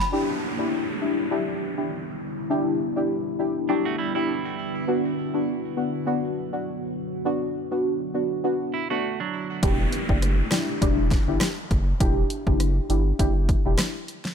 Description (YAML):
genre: dancehall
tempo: 101 BPM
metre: 4/4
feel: swing 56% on 16ths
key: unclear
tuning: A4 = 440 Hz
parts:
  - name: deep dark ambient pad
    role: sustained chords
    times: 0.0-9.6 s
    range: D3 to C#5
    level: -31 LUFS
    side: equal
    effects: chorus, built-in reverb, sidechain pumping
  - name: deep mellow chord stab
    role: accompaniment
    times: 0.1-13.8 s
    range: B3 to G4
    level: -26 LUFS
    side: left 1 dB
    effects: chorus, phaser
  - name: downlifter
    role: sound effects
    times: 0.1-4.9, 9.6-14.3 s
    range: none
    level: -34 LUFS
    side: right 1 dB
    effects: none
  - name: semi-hollow electric guitar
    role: arpeggios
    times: 3.7-4.8, 8.7-9.6 s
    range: F#3 to F#4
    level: -31 LUFS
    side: right 8 dB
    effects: tape echo
  - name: round analog bass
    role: bass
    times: 9.6-13.8 s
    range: E1 to G1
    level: -24 LUFS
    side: equal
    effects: none
  - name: deep house drum kit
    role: drums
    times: 9.6-14.3 s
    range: hi-hat, kick drum, rim click, snare drum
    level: -24 LUFS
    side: equal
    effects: overdrive
room: light reverb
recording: none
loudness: -22 LUFS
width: side -7 dB against mid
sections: 0.1-9.6 A section; 9.6-14.3 B section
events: none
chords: 0.1 Em7; 4.9 Bm; 9.6 Em7